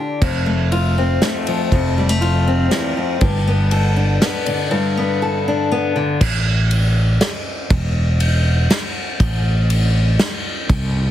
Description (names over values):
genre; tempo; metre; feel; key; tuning
indie folk with a building arrangement; 120 BPM; 3/4; straight; unclear; A4 = 440 Hz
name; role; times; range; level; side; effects
fingerpicked steel-string acoustic guitar; accompaniment; 0.0-6.2 s; E2 to A4; -18 LUFS; left 2 dB; none
fretless electric bass; bass; 0.2-11.1 s; E1 to C2; -16 LUFS; equal; none
unplugged drum kit; drums; 0.2-10.8 s; crash cymbal, kick drum, ride cymbal, snare drum; -20 LUFS; equal; none
room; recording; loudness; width
small room ambience; heavily compressed radio sound; -15 LUFS; side -12 dB against mid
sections
0.2-6.2 A section; 6.2-11.1 B section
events
none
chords
0.2 F; 3.2 Gadd9; 6.2 N.C.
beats
| 0.21 0.72 1.22 | 1.72 2.22 2.72 | 3.22 3.72 4.22 | 4.72 5.21 5.71 | 6.21 6.71 7.21 | 7.71 8.21 8.70 | 9.20 9.70 10.20 | 10.70